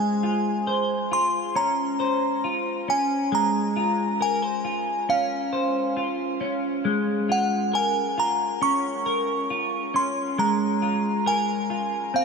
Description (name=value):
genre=dream pop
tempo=68 BPM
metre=4/4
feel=straight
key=Bb minor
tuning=A4 = 440 Hz
part: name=glassy synth bell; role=melody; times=0.0-12.2 s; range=F5 to Db6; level=-25 LUFS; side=right 1 dB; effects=chorus, shimmer reverb, ping-pong delay
part: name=semi-hollow electric guitar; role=arpeggios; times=0.0-12.2 s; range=Ab3 to C5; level=-25 LUFS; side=left 1 dB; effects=analog chorus, shimmer reverb, ping-pong delay
room=wet huge ambient reverb, RT60 7.1 s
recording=none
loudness=-22 LUFS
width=side -5 dB against mid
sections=0.0-12.2 A section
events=none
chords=0.0 Bbm9